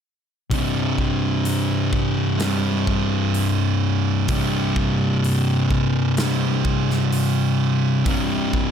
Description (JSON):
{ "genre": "stoner and doom metal", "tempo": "64 BPM", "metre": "4/4", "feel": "straight", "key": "unclear", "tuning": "A4 = 440 Hz", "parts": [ { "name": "thick fuzz guitar", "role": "riff", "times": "0.5-8.7 s", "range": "C2 to C3", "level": "-21 LUFS", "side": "left 4 dB", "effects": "distortion" }, { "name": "thick fuzz guitar", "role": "riff", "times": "0.5-8.7 s", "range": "C2 to C3", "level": "-23 LUFS", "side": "right 10 dB", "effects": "distortion" }, { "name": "big rock drum kit", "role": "drums", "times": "0.5-8.7 s", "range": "hi-hat, kick drum, snare drum", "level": "-27 LUFS", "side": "equal", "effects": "none" } ], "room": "small room ambience", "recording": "none", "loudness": "-18 LUFS", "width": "side -8 dB against mid", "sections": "0.5-8.7 A section", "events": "none", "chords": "0.5 C5", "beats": "| 0.52 1.46 2.41 3.35 | 4.30 5.24 6.18 7.13 | 8.07" }